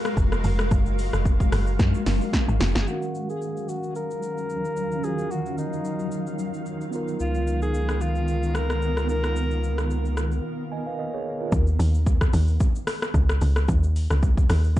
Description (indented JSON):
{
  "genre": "amapiano",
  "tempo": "111 BPM",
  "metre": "4/4",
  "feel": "swing 55% on 16ths",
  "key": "unclear",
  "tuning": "A4 = 440 Hz",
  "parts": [
    { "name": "granular cloud pad", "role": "sustained chords", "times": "0.0-11.5 s", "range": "Eb3 to F5", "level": "-31 LUFS", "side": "equal", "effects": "built-in reverb, sidechain pumping, low-pass filter" },
    { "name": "deep house drum kit", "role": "drums", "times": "0.1-14.8 s", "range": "hi-hat, kick drum, rim click, shaker, snare drum", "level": "-24 LUFS", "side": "equal", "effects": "overdrive, vintage 12-bit sampler grit" },
    { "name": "woody log drum bass", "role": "bass", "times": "0.2-2.9, 11.5-14.8 s", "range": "F1 to Gb2", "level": "-21 LUFS", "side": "equal", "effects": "none" },
    { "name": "breathy alto saxophone", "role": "melody", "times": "2.8-9.9 s", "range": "Eb4 to Bb4", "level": "-31 LUFS", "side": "left 1 dB", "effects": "low-pass filter, digital delay" },
    { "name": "mellow tine electric piano", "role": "accompaniment", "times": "2.9-11.7 s", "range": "Eb3 to Ab5", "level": "-32 LUFS", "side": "right 2 dB", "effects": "medium stereo tremolo, low-pass filter" },
    { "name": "saturated sub bass", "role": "bass", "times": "7.2-10.4 s", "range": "Db2", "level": "-25 LUFS", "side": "equal", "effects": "none" }
  ],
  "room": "digital ambience",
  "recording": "dark, warm production, nothing above 10.8 kHz",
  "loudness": "-22 LUFS",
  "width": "side -14 dB against mid",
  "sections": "0.0-2.9 A section; 2.9-11.5 B section; 11.5-14.8 A section",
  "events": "drop 0.0-2.9, 11.5-14.8; drum fill 1.8-2.9; filter sweep 2.9-11.5; break 10.4-11.5",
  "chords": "0.0 Gbmaj9; 2.9 Ebm9; 6.9 Db13; 11.5 Dbsus2"
}